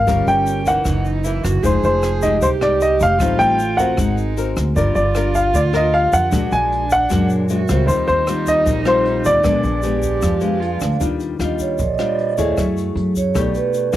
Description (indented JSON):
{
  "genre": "bossa nova",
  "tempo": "154 BPM",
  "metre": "4/4",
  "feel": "straight",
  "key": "Eb major",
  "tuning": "A4 = 440 Hz",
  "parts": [
    { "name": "warm baby grand piano", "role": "melody", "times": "0.0-10.4 s", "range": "C5 to Ab5", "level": "-17 LUFS", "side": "equal", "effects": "cassette tape" },
    { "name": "dark cello", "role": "second line", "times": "0.0-11.0 s", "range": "Db4 to Ab4", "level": "-24 LUFS", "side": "right 8 dB", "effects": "cassette tape" },
    { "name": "nylon-string guitar", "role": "accompaniment", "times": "0.0-14.0 s", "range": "Gb2 to Bb4", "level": "-23 LUFS", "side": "left 6 dB", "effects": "cassette tape" },
    { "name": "vibraphone with medium mallets", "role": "accompaniment", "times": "0.0-0.2, 4.0-14.0 s", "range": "G4 to F5", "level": "-25 LUFS", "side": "right 8 dB", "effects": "cassette tape" },
    { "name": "upright bass", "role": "bass", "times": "0.0-14.0 s", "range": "F1 to F#2", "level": "-21 LUFS", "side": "equal", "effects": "none" },
    { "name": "jazz brush drum kit", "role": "drums", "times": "0.1-14.0 s", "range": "hi-hat, kick drum, rim click", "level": "-26 LUFS", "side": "equal", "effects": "cassette tape" },
    { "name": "tube shaker", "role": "percussion", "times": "0.1-14.0 s", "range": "none", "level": "-36 LUFS", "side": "left 9 dB", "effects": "none" }
  ],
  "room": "light reverb",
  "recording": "home recording on cassette",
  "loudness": "-15 LUFS",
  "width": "side -13 dB against mid",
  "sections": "0.0-11.0 A section; 11.0-14.0 B section",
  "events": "vibraphone solo 11.0-14.0",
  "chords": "0.1 Gm7b5; 0.9 Gb6; 1.6 Fm9; 3.2 Am7b5; 4.0 Ab9; 4.8 Gm7; 6.3 Bb7alt; 7.9 Eb69; 9.4 Bb7b9; 11.0 Ebmaj9; 12.6 Gbm9; 13.3 Baug7"
}